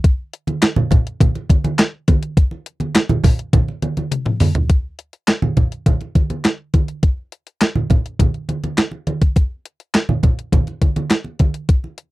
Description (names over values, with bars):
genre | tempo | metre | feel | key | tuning
funk | 103 BPM | 4/4 | straight | none | none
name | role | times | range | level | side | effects
crisp 8-bit digital drum machine | drums | 0.0-12.1 s | handclaps, hi-hat, kick drum, snare drum, toms | -14 LUFS | equal | overdrive
congas | percussion | 0.5-12.0 s | none | -20 LUFS | right 2 dB | none
room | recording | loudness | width
little or no reverb | dry, close 1970s-style studio recording | -16 LUFS | side -19 dB against mid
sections
0.0-4.7 A section; 4.7-12.1 B section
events
drum fill 4.1-4.7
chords
none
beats
| 0.04 0.62 1.21 1.79 | 2.37 2.95 3.54 4.12 | 4.70 5.28 5.87 6.45 | 7.03 7.61 8.20 8.78 | 9.36 9.94 10.53 11.11 | 11.69